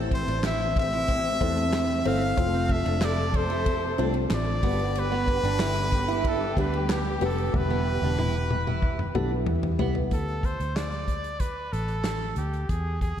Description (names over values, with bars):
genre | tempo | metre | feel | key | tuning
piano-driven pop | 93 BPM | 4/4 | straight | unclear | A4 = 440 Hz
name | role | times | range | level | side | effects
felt-muted upright piano | accompaniment | 0.0-10.1 s | G2 to C5 | -31 LUFS | left 2 dB | wide subtle chorus
warm studio string section | sustained chords | 0.0-10.1 s | C3 to A4 | -33 LUFS | equal | none
picked steel-string acoustic guitar | riff | 0.0-9.9 s | B3 to E4 | -34 LUFS | right 8 dB | lush chorus
vintage muted fingered electric bass | bass | 0.0-13.2 s | E1 to E2 | -29 LUFS | equal | none
brilliant trumpet | melody | 0.1-13.2 s | G4 to F5 | -30 LUFS | left 1 dB | none
loose indie drum kit | drums | 0.1-13.2 s | handclaps, hi-hat, kick drum, ride cymbal, snare drum, toms | -30 LUFS | equal | none
room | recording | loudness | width
moderate lush hall reverb, RT60 2.2 s | dreamy mix soaked in reverb | -23 LUFS | side -9 dB against mid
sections
0.0-10.1 A section; 10.1-13.2 B section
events
drum fill 7.5-10.1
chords
0.0 Am; 2.4 F; 4.6 G; 7.5 Em; 10.1 D5; 12.7 E